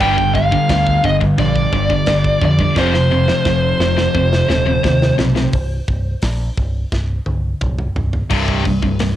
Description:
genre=heavy metal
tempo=87 BPM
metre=4/4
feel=straight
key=unclear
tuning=A4 = 440 Hz
part: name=bluesy overdriven lead guitar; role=melody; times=0.0-5.2 s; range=C5 to G5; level=-18 LUFS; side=equal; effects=distortion, cassette tape, analog delay
part: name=crunchy overdriven guitar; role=riff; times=0.0-5.5 s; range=F2 to G3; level=-23 LUFS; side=right 1 dB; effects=cassette tape
part: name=distorted electric guitar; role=riff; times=0.0-9.2 s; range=C2 to G3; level=-21 LUFS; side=right 7 dB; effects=distortion, cassette tape
part: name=tight distorted guitar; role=riff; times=0.0-9.2 s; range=C2 to G3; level=-19 LUFS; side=left 6 dB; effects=distortion, cassette tape
part: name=picked electric bass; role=bass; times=0.0-9.2 s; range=C1 to F2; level=-19 LUFS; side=equal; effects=none
part: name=tight metal drum kit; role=drums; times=0.0-9.2 s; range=china cymbal, crash cymbal, hi-hat, kick drum, snare drum, toms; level=-22 LUFS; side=equal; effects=none
room=little or no reverb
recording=home recording on cassette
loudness=-14 LUFS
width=side -12 dB against mid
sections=0.0-5.5 A section; 5.5-8.3 B section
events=drum fill 2.8-5.5, 6.9-8.3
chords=0.0 G5; 2.8 F5; 5.5 N.C.; 8.3 C5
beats=| 0.00 0.69 1.38 2.07 | 2.76 3.46 4.15 4.84 | 5.53 6.22 6.91 7.61 | 8.30 8.99

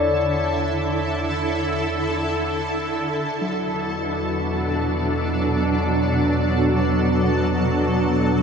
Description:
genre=ambient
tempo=free time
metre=none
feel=none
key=unclear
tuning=A4 = 440 Hz
part: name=shimmering ambient pad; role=sustained chords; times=0.0-8.4 s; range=B2 to A4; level=-20 LUFS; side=right 1 dB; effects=chorus, built-in reverb
part: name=tine electric piano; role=arpeggios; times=0.0-8.4 s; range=F#3 to A5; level=-30 LUFS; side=left 4 dB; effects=phaser, ping-pong delay
part: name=round analog bass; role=bass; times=0.0-8.4 s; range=E2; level=-27 LUFS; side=right 1 dB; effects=none
room=wet huge ambient reverb, RT60 7.6 s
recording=dreamy mix soaked in reverb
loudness=-19 LUFS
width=side -6 dB against mid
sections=0.0-8.4 A section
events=fade-out on tine electric piano 0.0-8.4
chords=0.0 D/E; 3.2 Bm/E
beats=free time

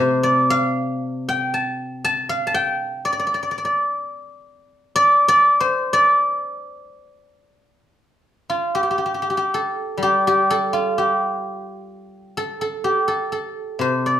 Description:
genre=chinese traditional, Chinese solo plucked strings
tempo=56-64 BPM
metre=2/4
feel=rubato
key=unclear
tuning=A4 = 435 Hz
part: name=guzheng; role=solo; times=0.0-14.2 s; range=C3 to A5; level=-18 LUFS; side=equal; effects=none
room=moderate large studio reverb, RT60 0.9 s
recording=band playing live in one room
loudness=-18 LUFS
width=side -11 dB against mid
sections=0.0-8.0 A section; 8.0-14.2 B section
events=none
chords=none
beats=1.03 | 2.05 3.05 | 4.02 4.97 | 5.93 6.92 | 7.96 9.01 | 10.00 10.96 | 11.90 12.85 | 13.82

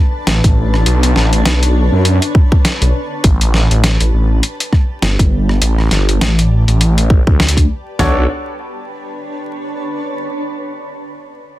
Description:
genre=glitch hop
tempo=101 BPM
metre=4/4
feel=swing 57% on 16ths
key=B minor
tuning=A4 = 440 Hz
part: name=granular cloud pad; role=texture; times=0.0-10.3 s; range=D4 to A5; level=-24 LUFS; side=equal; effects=built-in reverb, sidechain pumping
part: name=phased detuned saw bass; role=bass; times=0.3-8.3 s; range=G1 to F#2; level=-12 LUFS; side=equal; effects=phaser, tube saturation
part: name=boom bap sampler-style drum kit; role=drums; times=0.3-7.7 s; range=hi-hat, rim click, snare drum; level=-16 LUFS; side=equal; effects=studio ambience
part: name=pop drum kit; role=drums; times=0.4-8.2 s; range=kick drum, snare drum, toms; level=-11 LUFS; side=equal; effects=studio ambience
part: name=bright concert grand piano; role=stabs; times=8.0-8.2 s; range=D4 to C#5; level=-19 LUFS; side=equal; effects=vintage 12-bit sampler grit, sidechain pumping, tape echo
room=little or no reverb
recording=dense, heavily limited modern master, vinyl crackle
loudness=-11 LUFS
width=side -16 dB against mid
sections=0.0-8.0 A section; 8.0-10.4 B section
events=fade-out on ambient pad 0.0-8.0; filter sweep on detuned saw bass 0.0-8.0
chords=0.0 Bm9; 3.2 A9sus4; 8.0 Bm9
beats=0.27 | 0.86 1.46 2.05 2.65 | 3.24 3.83 4.43 5.02 | 5.62 6.21 6.80 7.40 | 7.99 8.59 9.18 9.77

